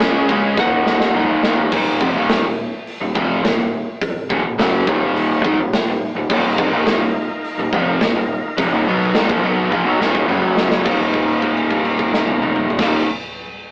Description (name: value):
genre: hard rock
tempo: 105 BPM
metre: 4/4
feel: straight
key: Eb minor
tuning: A4 = 440 Hz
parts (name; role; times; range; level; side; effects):
- lightly driven lead guitar; melody; 0.0-1.4 s; Gb5 to Ab5; -22 LUFS; equal; none
- overdriven tonewheel organ; sustained chords; 0.0-1.7, 6.3-13.0 s; Gb3 to Gb5; -25 LUFS; equal; none
- overdriven semi-hollow guitar; riff; 0.0-13.1 s; Eb2 to Db4; -19 LUFS; equal; none
- tight distorted guitar; riff; 0.0-13.1 s; Eb2 to Db4; -21 LUFS; equal; distortion
- growling fingered electric bass; bass; 0.0-13.0 s; Eb1 to Db2; -25 LUFS; equal; overdrive
- big rock drum kit; drums; 0.0-12.9 s; crash cymbal, hi-hat, kick drum, ride cymbal, snare drum, toms; -20 LUFS; equal; none
room: moderate small room reverb, RT60 0.6 s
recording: rough rehearsal-room recording, AM radio sound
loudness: -15 LUFS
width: side -32 dB against mid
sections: 0.0-1.7 A section; 1.7-10.9 B section; 10.9-13.1 C section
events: drum fill 0.6-1.7, 9.7-10.9; held note 10.9-12.8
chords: 0.0 Db5; 0.6 Ebm; 10.3 Gb5; 10.9 Eb5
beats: 0.00 0.57 1.15 | 1.72 2.30 2.87 3.44 | 4.01 4.59 5.16 5.73 | 6.30 6.87 7.44 8.01 | 8.58 9.15 9.72 10.29 | 10.86 11.43 12.00 12.57